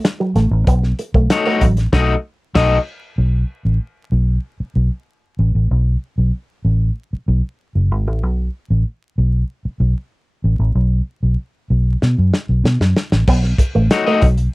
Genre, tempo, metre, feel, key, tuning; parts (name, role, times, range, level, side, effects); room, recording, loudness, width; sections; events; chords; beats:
funk; 95 BPM; 4/4; straight; B mixolydian; A4 = 440 Hz
electric guitar with an envelope filter; riff; 0.0-1.7, 13.3-14.4 s; F#3 to B3; -20 LUFS; right 2 dB; wide subtle chorus
warm soul drum kit; drums; 0.0-2.8, 12.0-14.5 s; crash cymbal, hi-hat, kick drum, snare drum; -17 LUFS; equal
vintage muted fingered electric bass; bass; 0.4-14.5 s; F#1 to B2; -15 LUFS; equal
electric guitar at the edge of break-up; accompaniment; 1.3-2.8, 13.9-14.2 s; A3 to D#5; -16 LUFS; left 4 dB
little or no reverb; vinyl crackle; -15 LUFS; side -22 dB against mid
0.0-3.2 A section; 3.2-13.3 B section; 13.3-14.5 A section
band accent 1.9-3.2; drum fill 12.0-13.3
0.0 B7; 3.2 B5; 13.3 B7
0.04 | 0.67 1.30 1.93 2.56 | 3.18 3.81 4.44 5.07 | 5.70 6.33 6.97 7.60 | 8.23 8.86 9.49 10.12 | 10.75 11.38 12.02 12.65 | 13.28 13.91